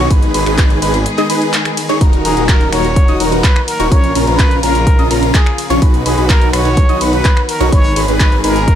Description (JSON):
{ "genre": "EDM, festival progressive house", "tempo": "126 BPM", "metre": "4/4", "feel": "straight", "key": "Eb minor", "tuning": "A4 = 441 Hz", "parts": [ { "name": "rich studio string section", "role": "sustained chords", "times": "0.0-8.8 s", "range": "Bb2 to Ab4", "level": "-24 LUFS", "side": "left 2 dB", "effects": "sidechain pumping" }, { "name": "warm grand piano", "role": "arpeggios", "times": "0.0-8.6 s", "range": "Bb5 to Eb6", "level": "-22 LUFS", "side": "left 2 dB", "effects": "sidechain pumping, ping-pong delay" }, { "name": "dense compressed supersaw", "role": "riff", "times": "0.0-8.6 s", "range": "Db4 to Eb5", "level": "-17 LUFS", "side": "equal", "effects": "sidechain pumping, ping-pong delay" }, { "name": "wide detuned saw bass", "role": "bass", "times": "0.0-8.8 s", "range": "Eb1 to B1", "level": "-18 LUFS", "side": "equal", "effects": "chorus, sidechain pumping" }, { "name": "big-room dance drum kit", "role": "drums", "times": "0.1-8.8 s", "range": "finger snaps, handclaps, hi-hat, ride cymbal", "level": "-20 LUFS", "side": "equal", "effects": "none" }, { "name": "electronic kick drum", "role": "drums", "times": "0.1-8.8 s", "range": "none", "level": "-11 LUFS", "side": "equal", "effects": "none" }, { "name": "trumpet with plunger mute", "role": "melody", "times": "2.2-8.8 s", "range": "Ab4 to Db5", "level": "-19 LUFS", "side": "equal", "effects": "vintage 12-bit sampler grit, ping-pong delay" } ], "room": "small room ambience", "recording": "none", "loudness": "-10 LUFS", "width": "side -10 dB against mid", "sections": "0.0-8.8 A section", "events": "break 1.1-2.0", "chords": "0.1 Abm; 2.0 Ebm; 3.9 Bbm; 5.8 B; 7.7 Abm", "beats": "| 0.11 0.58 1.06 1.53 | 2.01 2.49 2.96 3.44 | 3.92 4.39 4.87 5.34 | 5.82 6.30 6.77 7.25 | 7.72 8.20 8.68" }